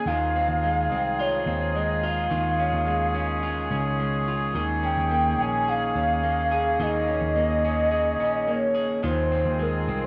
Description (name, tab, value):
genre	dream pop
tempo	107 BPM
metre	4/4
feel	straight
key	unclear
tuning	A4 = 442 Hz
part	warbly nostalgic lead	melody	0.0-10.1 s	Bb4 to Ab5	-27 LUFS	equal	chorus, tape echo
part	mellow woodwind section	sustained chords	0.0-10.1 s	Eb3 to Ab4	-33 LUFS	equal	none
part	electric guitar through a small old amp	arpeggios	0.0-10.1 s	Eb3 to Ab4	-31 LUFS	equal	subtle chorus, tape echo
part	vintage muted picked electric bass	bass	0.0-10.1 s	Bb1 to Eb2	-31 LUFS	equal	none
room	light reverb, digital ambience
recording	dry, gritty hardware recording, studio ambience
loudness	-24 LUFS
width	mono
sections	0.0-10.1 A section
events	none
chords	0.1 Fm; 2.3 Db/Eb; 4.6 Eb7sus4; 9.0 Fm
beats	| 0.07 0.63 1.19 1.75 | 2.31 2.87 3.43 3.99 | 4.55 5.11 5.67 6.23 | 6.79 7.36 7.92 8.48 | 9.04 9.60